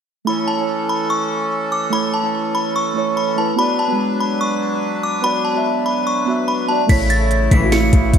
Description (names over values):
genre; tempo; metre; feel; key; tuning
hip hop, trap; 145 BPM; 4/4; half-time; A major; A4 = 440 Hz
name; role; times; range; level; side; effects
muted felt-like synth keys; accompaniment; 0.2-8.2 s; G#3 to E5; -20 LUFS; right 3 dB; chorus, phaser
delicate synth tine bell; melody; 0.3-8.2 s; A5 to C#7; -20 LUFS; left 2 dB; chorus, ping-pong delay
accordion; sustained chords; 0.3-8.2 s; C#3 to B4; -24 LUFS; equal; none
clean 808-style bass; bass; 6.9-8.2 s; A1; -17 LUFS; equal; none
trap drum kit; drums; 6.9-8.2 s; crash cymbal, hi-hat, kick drum, snare drum; -16 LUFS; equal; none
rich symphonic string section; stabs; 7.5-7.8 s; C#2 to E3; -22 LUFS; left 2 dB; ping-pong delay
room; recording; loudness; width
moderate lush hall reverb, RT60 1.9 s; dreamy mix soaked in reverb; -16 LUFS; side -8 dB against mid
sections
0.3-6.9 A section; 6.9-8.2 B section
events
none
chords
0.3 A; 3.6 Bm; 6.9 A